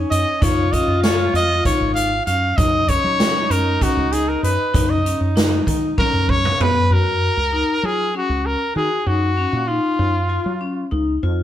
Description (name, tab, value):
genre	progressive instrumental, band music in an uneven meter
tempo	194 BPM (eighths)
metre	7/8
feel	straight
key	F# major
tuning	A4 = 440 Hz
part	breathy alto saxophone	second line	0.0-6.6 s	C#4 to E#4	-26 LUFS	right 1 dB	none
part	vibraphone with hard mallets	arpeggios	0.0-11.4 s	B3 to F#4	-24 LUFS	left 4 dB	none
part	woody fretless electric bass	bass	0.0-11.4 s	G#1 to F#3	-22 LUFS	equal	none
part	clear trumpet	melody	0.1-10.9 s	E#4 to E#5	-20 LUFS	equal	none
part	swinging big-band drum kit	drums	0.1-6.7 s	hi-hat, kick drum, snare drum, toms	-21 LUFS	right 1 dB	none
room	moderate stone room reverb, RT60 1.1 s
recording	band playing live in one room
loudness	-16 LUFS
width	side -11 dB against mid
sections	0.0-6.9 A section; 6.9-11.4 B section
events	trumpet solo 0.0-6.9; drum fill 6.0-6.9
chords	0.4 C#add9; 2.6 D#m7/F#; 4.7 B/F#; 6.9 F#maj7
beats	0.11 | 0.42 0.73 1.04 1.34 1.65 1.96 2.27 | 2.58 2.89 3.20 3.51 3.81 4.12 4.43 | 4.74 5.05 5.36 5.67 5.97 6.28 6.59 | 6.90 7.21 7.52 7.83 8.13 8.44 8.75 | 9.06 9.37 9.68 9.98 10.29 10.60 10.91 | 11.22